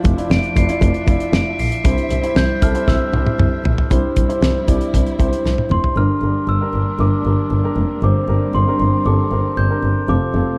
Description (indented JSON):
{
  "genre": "piano-driven pop",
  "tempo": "116 BPM",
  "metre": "4/4",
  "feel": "straight",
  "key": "unclear",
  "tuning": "A4 = 440 Hz",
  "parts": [
    { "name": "warm baby grand piano", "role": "accompaniment", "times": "0.0-10.6 s", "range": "G2 to D5", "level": "-24 LUFS", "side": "equal", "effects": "none" },
    { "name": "warm symphonic string section", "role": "sustained chords", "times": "0.0-10.6 s", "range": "F3 to E5", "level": "-31 LUFS", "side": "equal", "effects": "none" },
    { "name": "rich double bass", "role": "bass", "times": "0.0-10.4 s", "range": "F1 to C2", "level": "-21 LUFS", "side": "equal", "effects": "none" },
    { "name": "damped 70s drum kit", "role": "drums", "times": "0.0-6.0 s", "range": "hi-hat, kick drum, snare drum, toms", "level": "-20 LUFS", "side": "equal", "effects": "none" },
    { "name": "glockenspiel with rubber mallets", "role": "melody", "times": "0.3-10.6 s", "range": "C6 to D7", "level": "-27 LUFS", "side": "equal", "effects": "none" }
  ],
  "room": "moderate large studio reverb, RT60 1.3 s",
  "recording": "dark, warm production",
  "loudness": "-17 LUFS",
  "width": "mono",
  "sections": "0.0-3.9 A section; 3.9-6.0 B section; 6.0-10.6 C section",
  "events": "drum fill 2.9-3.9, 5.5-6.0",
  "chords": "0.0 Dmadd9/F; 1.9 C; 6.0 Gm",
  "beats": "0.31 0.82 1.34 | 1.85 2.36 2.88 3.39 | 3.91 4.42 4.94 5.45 | 5.97 6.48 7.00 7.51 | 8.03 8.54 9.06 9.57 | 10.09"
}